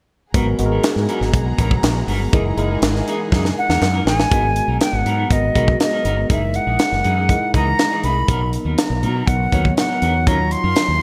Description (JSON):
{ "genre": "polished 1980s jazz-funk pop", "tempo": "121 BPM", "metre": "4/4", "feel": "straight", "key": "G# minor", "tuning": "A4 = 440 Hz", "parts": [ { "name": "tine electric piano", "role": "accompaniment", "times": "0.3-11.0 s", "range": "F#3 to C#5", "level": "-26 LUFS", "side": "equal", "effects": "analog chorus" }, { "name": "warm studio string section", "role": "sustained chords", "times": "0.3-4.3 s", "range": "B3 to A#5", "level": "-33 LUFS", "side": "equal", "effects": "none" }, { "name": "clean electric guitar", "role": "riff", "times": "0.3-10.9 s", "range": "E3 to A#4", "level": "-31 LUFS", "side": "equal", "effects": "lush chorus" }, { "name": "mellow fretless electric bass", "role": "bass", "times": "0.3-11.0 s", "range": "F#1 to B2", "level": "-23 LUFS", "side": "equal", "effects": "none" }, { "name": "tight funk drum kit", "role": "drums", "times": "0.3-10.9 s", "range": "hi-hat, kick drum, snare drum", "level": "-22 LUFS", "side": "equal", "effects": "gated reverb" }, { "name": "group handclap", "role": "percussion", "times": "0.8-3.9 s", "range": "none", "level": "-39 LUFS", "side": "equal", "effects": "none" }, { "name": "silver concert flute", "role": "melody", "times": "3.6-11.0 s", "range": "D#5 to B#5", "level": "-23 LUFS", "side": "equal", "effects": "none" } ], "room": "light reverb, small room ambience", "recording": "bright 1980s-style digital production", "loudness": "-18 LUFS", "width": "mono", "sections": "0.3-4.3 A section; 4.3-11.0 B section", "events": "drum fill 3.3-4.3", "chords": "0.3 G#m9; 2.3 F#13; 4.3 G#m9; 6.3 F#13; 8.3 Bmaj7; 10.3 D#m9" }